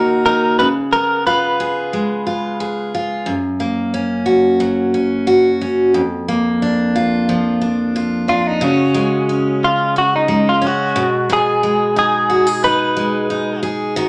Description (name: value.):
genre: pop.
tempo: 90 BPM.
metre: 4/4.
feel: straight.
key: unclear.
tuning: A4 = 440 Hz.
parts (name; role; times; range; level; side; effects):
direct-recorded clean electric guitar; melody; 0.0-2.9, 8.3-13.6 s; Db4 to Cb5; -19 LUFS; equal; vibrato effect.
picked steel-string acoustic guitar; accompaniment; 0.0-14.1 s; F2 to Ab4; -18 LUFS; equal; none.
room: moderate large studio reverb, RT60 0.9 s.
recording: none.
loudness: -16 LUFS.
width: mono.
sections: 0.0-8.6 A section; 8.6-14.1 B section.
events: none.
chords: 0.0 Ebm; 0.6 Db7; 3.3 Gb; 5.9 Bb/F; 8.6 Dbsus4; 11.0 Abm/Cb.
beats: | 0.59 1.26 1.93 2.60 | 3.26 3.93 4.60 5.27 | 5.94 6.61 7.28 7.95 | 8.62 9.28 9.95 10.62 | 11.29 11.96 12.63 13.30 | 13.96.